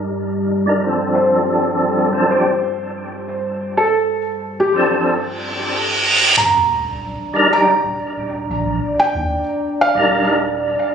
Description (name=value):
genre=trip hop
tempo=92 BPM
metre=4/4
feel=swing 53% on 16ths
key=unclear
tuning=A4 = 440 Hz
part: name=deep dark ambient pad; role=sustained chords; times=0.0-10.9 s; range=G3 to D5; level=-24 LUFS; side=right 1 dB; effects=chorus, built-in reverb
part: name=percussive tonewheel organ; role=accompaniment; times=0.7-10.4 s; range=F3 to Bb4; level=-18 LUFS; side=equal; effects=overdrive, chorus vibrato, fast rotary speaker, tremolo, tape echo
part: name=felt-muted upright piano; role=melody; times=1.1-10.2 s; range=G4 to Bb5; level=-18 LUFS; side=right 1 dB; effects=tape echo
part: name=reverse cymbal and sub drop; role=sound effects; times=5.4-9.0 s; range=none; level=-16 LUFS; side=right 2 dB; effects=none
part: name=warm sub bass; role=bass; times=6.4-10.7 s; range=Eb1 to Eb2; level=-27 LUFS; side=right 1 dB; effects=none
room=moderate lush hall reverb, RT60 3.1 s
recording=recorded on a phone in the room, studio reverb, compression, low-pass filter, nothing above 10.7 kHz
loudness=-15 LUFS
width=side -7 dB against mid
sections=0.0-6.4 A section; 6.4-10.9 B section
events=filter sweep 0.0-6.4; reverse cymbal 5.4-6.4; impact 6.4-9.0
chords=0.0 Ebmaj7; 1.1 Dm7; 6.4 Ebmaj7